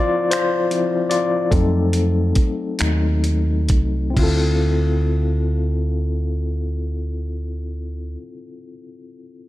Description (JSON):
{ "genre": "slow six-eight R&B", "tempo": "42-51 BPM (dotted quarters)", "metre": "6/8", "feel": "straight", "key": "D minor", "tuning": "A4 = 440 Hz", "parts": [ { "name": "overdriven tine electric piano", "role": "accompaniment", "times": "0.0-9.5 s", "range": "F3 to D5", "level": "-22 LUFS", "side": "left 3 dB", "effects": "fast tremolo" }, { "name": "dusty soul sampler-style drum kit", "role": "drums", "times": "0.3-4.4 s", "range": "crash cymbal, finger snaps, hi-hat, kick drum", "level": "-22 LUFS", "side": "right 1 dB", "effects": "none" }, { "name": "deep dub fingered electric bass", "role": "bass", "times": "1.5-8.2 s", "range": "C2 to F2", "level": "-20 LUFS", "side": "right 1 dB", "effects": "none" } ], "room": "little or no reverb", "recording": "none", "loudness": "-18 LUFS", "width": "side -16 dB against mid", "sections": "0.0-4.2 A section; 4.2-7.0 B section", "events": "slowing down 0.0-4.2; tine electric piano solo 0.0-4.2", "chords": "0.0 Dm7; 1.5 F7b9; 4.2 Dm7" }